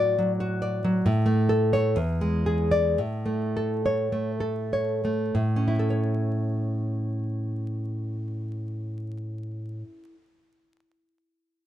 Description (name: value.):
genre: romantic piece for solo classical guitar.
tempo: 48-70 BPM.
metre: 2/4.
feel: rubato.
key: A major.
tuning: A4 = 438 Hz.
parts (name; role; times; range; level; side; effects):
nylon-string guitar; solo; 0.0-10.4 s; E2 to D5; -24 LUFS; equal; none.
room: light reverb.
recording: dark, warm production, vinyl crackle.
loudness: -24 LUFS.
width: side -12 dB against mid.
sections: 0.0-5.3 A section; 5.3-10.3 B section.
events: slowing down 0.2-5.3.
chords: 0.0 D/A; 1.1 A; 2.0 E7; 3.0 A.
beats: 0.20 | 1.07 1.98 | 3.00 4.12 | 5.35 6.57 | 7.82 9.08.